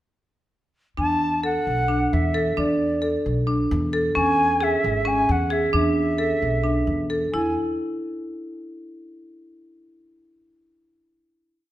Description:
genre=contemporary instrumental, chamber music in an uneven meter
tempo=264 BPM (eighths)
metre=7/8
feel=straight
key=E mixolydian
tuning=A4 = 440 Hz
part: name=concert flute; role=melody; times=1.0-7.5 s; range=D5 to A5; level=-24 LUFS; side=right 1 dB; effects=none
part: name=marimba with hard mallets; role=arpeggios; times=1.0-7.5 s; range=C#4 to A4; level=-23 LUFS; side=equal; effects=none
part: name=upright bass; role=bass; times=1.0-7.5 s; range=G#1 to E2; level=-26 LUFS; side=equal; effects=none
room=moderate recital hall reverb, RT60 1.3 s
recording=none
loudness=-20 LUFS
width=side -14 dB against mid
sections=1.0-7.3 A section; 7.3-8.9 final chord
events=none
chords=1.0 E9sus4; 4.2 C#m; 5.7 E7sus4; 7.3 N.C.

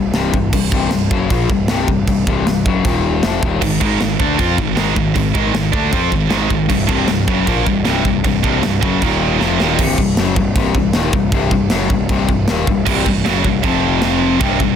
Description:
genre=heavy metal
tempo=156 BPM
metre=4/4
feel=straight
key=C minor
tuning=A4 = 441 Hz
part: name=distorted electric guitar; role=riff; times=0.0-14.8 s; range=C2 to F4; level=-18 LUFS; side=left 7 dB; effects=distortion
part: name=fuzz picked electric bass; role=bass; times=0.0-14.8 s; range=C1 to F2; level=-21 LUFS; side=right 1 dB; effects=overdrive
part: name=tight metal drum kit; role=drums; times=0.1-14.7 s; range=china cymbal, crash cymbal, kick drum, snare drum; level=-19 LUFS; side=right 1 dB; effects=none
part: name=heavy high-gain guitar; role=riff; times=3.6-9.8, 12.9-14.8 s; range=C2 to F4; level=-18 LUFS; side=right 14 dB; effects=distortion
room=studio ambience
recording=dense, heavily limited modern master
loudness=-13 LUFS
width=side -8 dB against mid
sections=0.0-9.8 A section; 9.8-14.8 B section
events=drum fill 9.4-9.8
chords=0.0 C5; 2.8 Eb5; 3.2 Cm; 3.6 Ab5; 6.7 C5; 9.0 Eb5; 9.4 Cm; 13.6 F5

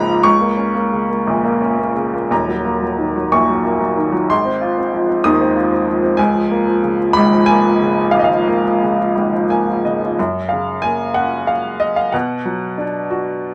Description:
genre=classical, lyrical solo piano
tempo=58-65 BPM (dotted quarters)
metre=6/8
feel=rubato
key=F# major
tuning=A4 = 441 Hz
part: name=clear upright piano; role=solo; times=0.0-13.5 s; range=D#1 to D#6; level=-16 LUFS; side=equal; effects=none
room=moderate booth ambience, RT60 0.2 s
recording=none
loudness=-17 LUFS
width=mono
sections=0.0-10.2 A section; 10.2-13.5 B section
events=upright piano fill 9.2-10.2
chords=0.3 A#m; 2.3 D#m7; 4.3 G#6; 6.2 C#6; 10.2 F#; 12.1 Bm

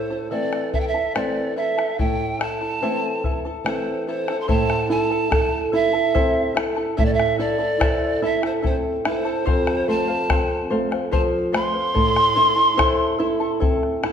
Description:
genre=andean folk, Andean ensemble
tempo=72 BPM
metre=3/4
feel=straight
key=A minor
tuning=A4 = 441 Hz
part: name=breathy polished pan flute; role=melody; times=0.0-13.6 s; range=C5 to C6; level=-22 LUFS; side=right 2 dB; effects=none
part: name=charango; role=accompaniment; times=0.0-14.1 s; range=E4 to A5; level=-25 LUFS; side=left 4 dB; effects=none
part: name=flamenco guitar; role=accompaniment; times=0.0-14.1 s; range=F2 to A4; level=-25 LUFS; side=right 4 dB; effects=none
part: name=bombo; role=percussion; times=0.5-14.1 s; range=none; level=-25 LUFS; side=left 2 dB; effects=none
room=wet recital hall reverb, RT60 1.5 s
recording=none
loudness=-18 LUFS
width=side -8 dB against mid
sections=0.0-4.5 A section; 4.5-14.1 B section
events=none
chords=0.0 Am; 9.5 F; 12.0 Am

